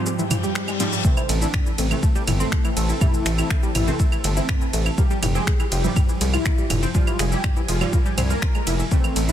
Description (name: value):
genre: melodic techno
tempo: 122 BPM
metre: 4/4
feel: straight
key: unclear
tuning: A4 = 440 Hz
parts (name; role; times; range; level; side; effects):
- fat analog lead; melody; 0.0-9.3 s; G3 to Bb4; -29 LUFS; left 2 dB; ensemble chorus, sidechain pumping, tape echo
- warm analog pad; sustained chords; 0.0-9.3 s; E3 to Ab5; -32 LUFS; left 1 dB; chorus, vintage 12-bit sampler grit, sidechain pumping
- synth brass stab; stabs; 0.0-9.3 s; Ab2 to A3; -30 LUFS; right 4 dB; chorus, sidechain pumping, ping-pong delay
- tight sequenced synth; arpeggios; 0.1-9.3 s; E3 to F5; -30 LUFS; equal; chorus, sidechain pumping, ping-pong delay
- deep house drum kit; drums; 0.1-9.3 s; claves, finger snaps, hi-hat, ride cymbal, shaker, toms; -26 LUFS; right 1 dB; soft clipping on snare
- reverse cymbal; sound effects; 0.3-1.0 s; none; -30 LUFS; left 5 dB; none
- electronic kick drum; drums; 1.0-9.0 s; none; -20 LUFS; equal; none
- gritty driven synth bass; bass; 1.3-9.3 s; F1 to C2; -22 LUFS; equal; tube saturation, sidechain pumping
room: digital ambience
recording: dense, heavily limited modern master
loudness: -18 LUFS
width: side -10 dB against mid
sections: 0.0-9.3 A section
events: break 0.0-1.0; reverse cymbal 0.3-1.0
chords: 0.0 Fmadd9; 1.0 Am; 5.0 Fmadd9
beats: 0.06 0.55 | 1.05 1.54 2.03 2.52 | 3.01 3.50 4.00 4.49 | 4.98 5.47 5.96 6.46 | 6.95 7.44 7.93 8.42 | 8.91